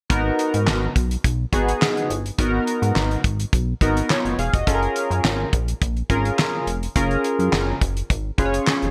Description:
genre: early-eighties boogie funk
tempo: 105 BPM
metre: 4/4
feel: straight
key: G# dorian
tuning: A4 = 438 Hz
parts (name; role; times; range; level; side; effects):
- chorused polysynth; accompaniment; 0.1-8.9 s; B3 to E#5; -25 LUFS; equal; none
- chorused synth bass; bass; 0.1-8.9 s; E1 to G#2; -26 LUFS; equal; none
- damped 70s drum kit; drums; 0.1-8.9 s; handclaps, hi-hat, kick drum, snare drum; -24 LUFS; equal; gated reverb
room: light reverb, studio ambience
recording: none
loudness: -21 LUFS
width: mono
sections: 0.1-8.9 A section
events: none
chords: 0.1 G#m9; 4.7 F#maj7

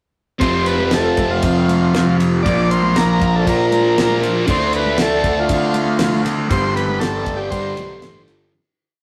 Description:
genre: psychedelic rock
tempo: 118 BPM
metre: 4/4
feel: straight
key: unclear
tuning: A4 = 440 Hz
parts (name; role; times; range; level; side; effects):
- combo organ; melody; 0.4-8.2 s; F4 to D5; -23 LUFS; equal; none
- bright tonewheel organ; sustained chords; 0.4-8.5 s; F3 to G4; -31 LUFS; equal; none
- thick fuzz guitar; riff; 0.4-8.5 s; F2 to D4; -20 LUFS; equal; distortion, phaser
- fuzz picked electric bass; bass; 0.4-8.5 s; F1 to D3; -24 LUFS; equal; overdrive
- damped 70s drum kit; drums; 0.4-8.4 s; kick drum, ride cymbal, snare drum; -26 LUFS; equal; none
- congas; percussion; 0.8-8.4 s; none; -33 LUFS; equal; none
room: moderate stone room reverb, RT60 1.0 s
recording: rough rehearsal-room recording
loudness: -17 LUFS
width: mono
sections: 0.4-8.5 pre-chorus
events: fade-out 6.5-8.5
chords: 0.4 F; 2.5 Bb; 4.5 Dm7; 6.5 Gsus4

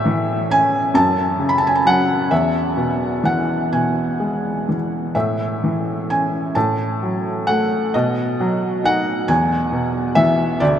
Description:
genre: classical, lyrical solo piano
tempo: 43 BPM (dotted quarters)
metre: 6/8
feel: uneven beats, rubato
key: unclear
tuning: A4 = 440 Hz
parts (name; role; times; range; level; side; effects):
- felt-muted upright piano; solo; 0.0-10.8 s; D2 to B5; -16 LUFS; equal; none
room: wet huge ambient reverb, RT60 8.8 s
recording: in a vast, echoing space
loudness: -16 LUFS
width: side -9 dB against mid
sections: 0.0-10.8 A section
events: none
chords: 0.0 A; 0.9 F#m; 2.3 E; 5.1 A; 6.6 F#m/A; 7.9 B; 9.3 E

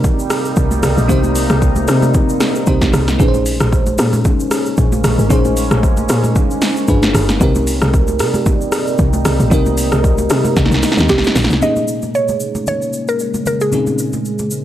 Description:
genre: amapiano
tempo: 114 BPM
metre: 4/4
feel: swing 55% on 16ths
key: Bb dorian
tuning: A4 = 440 Hz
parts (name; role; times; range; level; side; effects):
- bell-like FM electric piano; accompaniment; 0.0-14.6 s; Bb2 to C5; -20 LUFS; left 1 dB; chorus, phaser
- deep dark ambient pad; sustained chords; 0.0-14.6 s; C3 to C5; -22 LUFS; right 1 dB; chorus, built-in reverb
- woody log drum bass; bass; 0.0-11.6 s; G1 to C3; -16 LUFS; equal; none
- deep house drum kit; drums; 0.0-14.6 s; hi-hat, kick drum, rim click, shaker, snare drum; -16 LUFS; equal; overdrive
- congas; percussion; 0.0-14.5 s; none; -24 LUFS; right 1 dB; none
- mallet-like synth pluck; melody; 11.1-14.6 s; G4 to Eb5; -18 LUFS; right 1 dB; chorus, phaser, analog delay
room: digital ambience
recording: dry, gritty hardware recording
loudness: -12 LUFS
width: side -12 dB against mid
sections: 0.0-11.6 A section; 11.6-14.6 B section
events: drop 0.0-11.6; drum fill 10.6-11.6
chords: 0.0 Cm7; 3.2 Bbm11; 6.9 G7b9; 7.4 Cm7; 11.6 Bbm11

